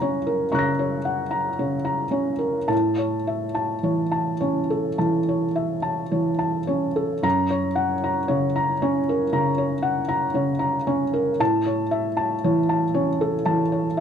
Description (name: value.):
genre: neoclassical minimalist piano.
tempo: 52-59 BPM.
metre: 4/4.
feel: rubato.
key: unclear.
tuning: A4 = 440 Hz.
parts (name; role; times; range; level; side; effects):
felt-muted upright piano; solo; 0.0-14.0 s; F#2 to A#6; -20 LUFS; equal; none.
room: moderate studio reverb, RT60 0.6 s.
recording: dark, warm production.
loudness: -20 LUFS.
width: side -8 dB against mid.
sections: 0.0-7.2 A section; 7.2-14.0 B section.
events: none.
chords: 0.0 F#; 2.7 A; 7.2 F#; 11.4 A.